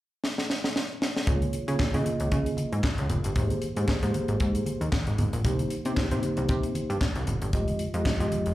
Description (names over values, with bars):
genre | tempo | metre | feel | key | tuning
early-eighties boogie funk | 115 BPM | 4/4 | swing 56% on 16ths | unclear | A4 = 442 Hz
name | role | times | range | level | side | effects
tight funk drum kit | drums | 0.2-8.5 s | handclaps, hi-hat, kick drum, snare drum | -29 LUFS | equal | none
mellow tine electric piano | accompaniment | 1.3-8.5 s | Ab3 to Eb5 | -31 LUFS | equal | medium stereo tremolo, plate reverb, slapback echo
plucky analog bass | bass | 1.3-8.5 s | F1 to Db3 | -28 LUFS | equal | none
congas | percussion | 1.3-8.5 s | none | -33 LUFS | right 1 dB | none
room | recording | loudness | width
light reverb | live gig heard through the venue's PA, club reverb | -25 LUFS | side -15 dB against mid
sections
0.0-1.3 A section; 1.3-8.5 B section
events
drum fill 0.2-1.3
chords
0.0 N.C.; 1.3 Db6; 3.4 Abmaj9; 5.4 Cm7; 7.5 Fm9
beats
0.23 0.75 | 1.27 1.79 2.32 2.84 | 3.36 3.88 4.40 4.92 | 5.45 5.97 6.49 7.01 | 7.53 8.06